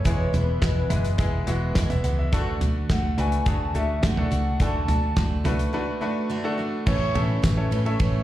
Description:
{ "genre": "piano-driven pop", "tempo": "106 BPM", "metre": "4/4", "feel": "straight", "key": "A major", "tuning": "A4 = 442 Hz", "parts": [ { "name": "bansuri", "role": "melody", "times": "0.0-8.2 s", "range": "B4 to A5", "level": "-31 LUFS", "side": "left 2 dB", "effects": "plate reverb, slapback echo" }, { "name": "bright grand piano", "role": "accompaniment", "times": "0.0-8.2 s", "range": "A2 to F#5", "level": "-29 LUFS", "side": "left 2 dB", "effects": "plate reverb, slapback echo" }, { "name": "picked steel-string acoustic guitar", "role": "riff", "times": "0.0-8.2 s", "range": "E2 to F#4", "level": "-30 LUFS", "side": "right 4 dB", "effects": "none" }, { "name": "vintage muted fingered electric bass", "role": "bass", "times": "0.1-8.2 s", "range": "E1 to A2", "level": "-25 LUFS", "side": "equal", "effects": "none" }, { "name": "damped 70s drum kit", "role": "drums", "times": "0.1-8.1 s", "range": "crash cymbal, handclaps, hi-hat, kick drum, ride cymbal, snare drum, toms", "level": "-25 LUFS", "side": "equal", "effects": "none" }, { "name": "tambourine", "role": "percussion", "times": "7.4-7.6 s", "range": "none", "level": "-43 LUFS", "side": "left 5 dB", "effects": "slapback echo" } ], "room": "light reverb", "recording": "live gig heard through the venue's PA, club reverb", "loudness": "-21 LUFS", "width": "side -14 dB against mid", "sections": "0.0-6.9 A section; 6.9-8.2 B section", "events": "break 5.7-6.9", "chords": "0.1 E; 2.3 D; 6.9 A" }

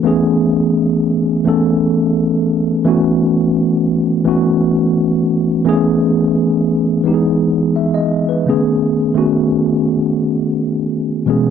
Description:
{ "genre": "soul", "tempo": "86 BPM", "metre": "4/4", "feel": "straight", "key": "unclear", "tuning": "A4 = 440 Hz", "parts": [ { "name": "mellow tine electric piano", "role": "solo", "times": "0.0-11.5 s", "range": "B2 to E5", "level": "-13 LUFS", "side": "equal", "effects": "medium stereo tremolo" } ], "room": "light reverb", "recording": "dry, close 1970s-style studio recording", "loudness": "-13 LUFS", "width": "side -8 dB against mid", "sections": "0.0-8.5 A section; 8.5-11.5 B section", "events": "none", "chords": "0.1 Amaj9; 2.9 B9sus4; 5.7 Amaj9; 7.1 Emaj7; 8.5 B13" }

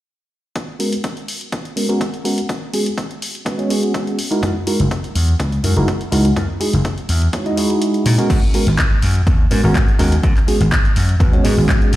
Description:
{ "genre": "filtered disco house", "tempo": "124 BPM", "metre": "4/4", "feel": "straight", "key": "G# minor", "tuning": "A4 = 439 Hz", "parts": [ { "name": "electronic kick drum", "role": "drums", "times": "0.6-11.8 s", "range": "none", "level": "-17 LUFS", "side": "equal", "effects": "high-pass filter on kick" }, { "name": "house drum kit", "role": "drums", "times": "0.6-12.0 s", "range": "crash cymbal, handclaps, hi-hat", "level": "-25 LUFS", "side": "left 1 dB", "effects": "sidechain pumping on hats, sidechain pumping on cymbals" }, { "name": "bell-like tine electric piano", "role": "accompaniment", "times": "0.8-11.9 s", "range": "G#3 to D#5", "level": "-19 LUFS", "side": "right 1 dB", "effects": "phaser, sidechain pumping, low-pass filter" }, { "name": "vintage slap bass", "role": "bass", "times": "4.4-12.0 s", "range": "F#1 to A#2", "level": "-16 LUFS", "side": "equal", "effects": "sidechain pumping, low-pass filter" } ], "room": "light reverb, digital ambience", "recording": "played on a big sound system in a bare room, stone room reverb", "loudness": "-14 LUFS", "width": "side -15 dB against mid", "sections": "0.6-8.3 A section; 8.3-12.0 B section", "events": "filter sweep 0.6-8.3; kick drops out 7.8-8.3", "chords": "0.6 G#m11; 4.2 F#13; 8.3 G#m11" }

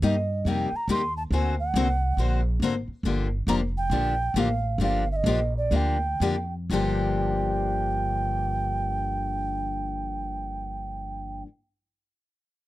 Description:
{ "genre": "acoustic string swing (jazz manouche)", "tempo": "118-139 BPM", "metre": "4/4", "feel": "swing 63% on 8ths", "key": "G minor", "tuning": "A4 = 440 Hz", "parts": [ { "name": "mellow alto ocarina", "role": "melody", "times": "0.0-11.4 s", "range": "D5 to C6", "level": "-29 LUFS", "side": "right 3 dB", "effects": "none" }, { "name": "picked steel-string acoustic guitar", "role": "accompaniment", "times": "0.0-11.5 s", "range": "G2 to C5", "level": "-28 LUFS", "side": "left 4 dB", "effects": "none" }, { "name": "upright bass", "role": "bass", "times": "0.0-11.4 s", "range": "F1 to G2", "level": "-28 LUFS", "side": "equal", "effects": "none" } ], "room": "little or no reverb", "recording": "dry, close 1970s-style studio recording", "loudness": "-24 LUFS", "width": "side -16 dB against mid", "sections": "0.0-6.7 A section; 6.7-10.8 B section", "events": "slowing down 3.0-6.7", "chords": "0.0 Cm7; 1.3 Daug7; 3.0 Gm7" }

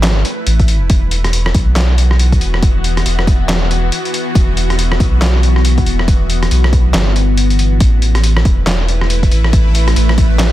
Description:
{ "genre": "deep dubstep", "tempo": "139 BPM", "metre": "4/4", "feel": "swing 60% on 16ths, half-time", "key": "E minor", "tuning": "A4 = 441 Hz", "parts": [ { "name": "bowed-like drone", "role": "sustained chords", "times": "0.0-10.5 s", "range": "E3 to B4", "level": "-20 LUFS", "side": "left 2 dB", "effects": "built-in reverb, phaser, vintage 12-bit sampler grit" }, { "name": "saturated sub bass", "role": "bass", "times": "0.0-10.5 s", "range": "E1 to B1", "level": "-13 LUFS", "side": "equal", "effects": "none" }, { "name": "trip hop sampler-style drum kit", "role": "drums", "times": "0.0-10.5 s", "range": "handclaps, hi-hat, rim click, snare drum", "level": "-18 LUFS", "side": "equal", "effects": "soft clipping on snare" }, { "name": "electronic kick drum", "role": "drums", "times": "0.6-10.3 s", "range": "none", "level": "-13 LUFS", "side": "equal", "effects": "overdrive" } ], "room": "little or no reverb", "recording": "dense, heavily limited modern master", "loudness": "-10 LUFS", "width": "side -14 dB against mid", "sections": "0.0-10.5 A section", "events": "none", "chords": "0.0 A5; 0.9 Em; 7.8 A5" }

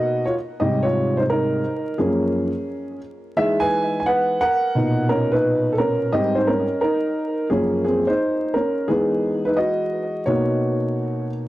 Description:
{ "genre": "hip hop", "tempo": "87 BPM", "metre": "4/4", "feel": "swing 66% on 16ths", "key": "unclear", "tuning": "A4 = 440 Hz", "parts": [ { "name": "dark baby grand piano", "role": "solo", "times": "0.0-11.5 s", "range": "Gb2 to G#5", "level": "-19 LUFS", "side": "equal", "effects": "tape echo" } ], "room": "light reverb", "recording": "dry, gritty hardware recording, vinyl crackle", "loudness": "-18 LUFS", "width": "side -16 dB against mid", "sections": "0.0-11.5 A section", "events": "grand piano solo 0.0-11.5", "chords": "0.0 Bmaj7; 0.6 Abmaj9; 2.0 Gbmaj9; 3.4 Emaj7; 4.8 Bmaj9; 6.1 Abmaj9; 7.5 Gbmaj7; 8.9 Emaj9; 10.3 Bmaj9" }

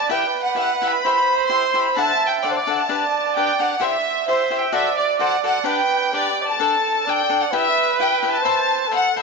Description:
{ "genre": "mexican folk, mariachi", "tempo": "130 BPM", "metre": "2/4", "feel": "straight", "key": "G major", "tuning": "A4 = 440 Hz", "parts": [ { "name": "rich chamber violin section", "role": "melody", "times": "0.0-9.2 s", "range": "C5 to C6", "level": "-19 LUFS", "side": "left 1 dB", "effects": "none" }, { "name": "dark trumpet", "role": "second line", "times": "0.0-9.2 s", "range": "G4 to E5", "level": "-23 LUFS", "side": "right 10 dB", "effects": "none" }, { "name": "cavaquinho", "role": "accompaniment", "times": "0.1-9.2 s", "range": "D4 to B5", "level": "-25 LUFS", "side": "left 11 dB", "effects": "none" } ], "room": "wet plate reverb, RT60 2.9 s", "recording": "1960s-style stereo with parts hard left and right, nothing above 7.9 kHz", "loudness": "-17 LUFS", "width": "side -3 dB against mid", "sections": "0.0-6.6 A section; 6.6-9.2 A section", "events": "none", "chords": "0.1 Em; 1.0 C; 2.0 D; 2.9 G; 3.8 C; 4.8 D7; 5.7 G; 6.6 Gsus2; 7.5 Em; 8.5 Amadd9" }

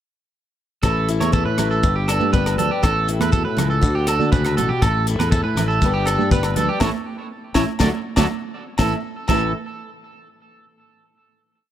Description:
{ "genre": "highlife guitar band", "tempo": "121 BPM", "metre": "4/4", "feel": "straight", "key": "A mixolydian", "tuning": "A4 = 440 Hz", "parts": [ { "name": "picked acoustic archtop guitar", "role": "accompaniment", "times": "0.8-9.5 s", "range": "G2 to A4", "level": "-24 LUFS", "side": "left 5 dB", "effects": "none" }, { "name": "electric guitar at the edge of break-up", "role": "arpeggios", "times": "0.8-9.5 s", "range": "E4 to D5", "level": "-23 LUFS", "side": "right 5 dB", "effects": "lush chorus, tape echo" }, { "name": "fingered electric bass", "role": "bass", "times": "0.8-9.5 s", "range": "G1 to D3", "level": "-22 LUFS", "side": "equal", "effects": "none" }, { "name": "tight funk drum kit", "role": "drums", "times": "0.8-9.4 s", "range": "crash cymbal, hi-hat, kick drum, rim click, snare drum", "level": "-22 LUFS", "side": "equal", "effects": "none" }, { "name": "agogo bells", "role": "percussion", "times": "0.8-9.4 s", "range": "none", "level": "-32 LUFS", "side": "left 5 dB", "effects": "none" }, { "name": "shekere", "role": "percussion", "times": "0.8-9.5 s", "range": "none", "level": "-29 LUFS", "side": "left 3 dB", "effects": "none" }, { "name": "congas", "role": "percussion", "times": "1.2-9.5 s", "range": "none", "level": "-27 LUFS", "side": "right 11 dB", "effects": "none" } ], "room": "light reverb, studio ambience", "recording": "none", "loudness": "-17 LUFS", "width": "side -11 dB against mid", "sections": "0.8-8.8 groove; 8.8-10.8 final chord", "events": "band accent 6.8-8.8; drum fill 8.4-8.8", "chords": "0.8 A; 1.8 G; 2.8 A; 3.8 D; 4.8 A; 5.8 G; 6.8 A; 7.8 D; 8.8 A" }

